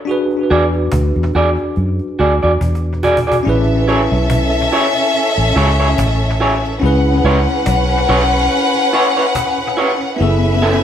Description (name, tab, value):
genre	lovers rock reggae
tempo	71 BPM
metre	4/4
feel	swing 56% on 16ths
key	A major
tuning	A4 = 441 Hz
part	bell-like tine electric piano	accompaniment	0.0-10.8 s	B3 to B4	-20 LUFS	equal	fast stereo tremolo, tape echo
part	cajon	drums	0.1-10.7 s	none	-24 LUFS	left 1 dB	tape echo
part	electric guitar through a small old amp	stabs	0.5-10.8 s	B3 to D5	-17 LUFS	right 2 dB	none
part	vintage muted fingered electric bass	bass	0.5-10.8 s	F#1 to F#2	-16 LUFS	equal	none
part	warm symphonic violin section	second line	3.5-10.8 s	C#4 to F#5	-16 LUFS	left 2 dB	none
room	wet stone room reverb, RT60 1.2 s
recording	band playing live in one room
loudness	-12 LUFS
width	side -9 dB against mid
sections	0.0-3.5 A section; 3.5-10.8 B section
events	drum fill 2.6-3.5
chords	0.1 E9; 3.5 Amaj7; 6.8 C#m7; 10.2 F#m11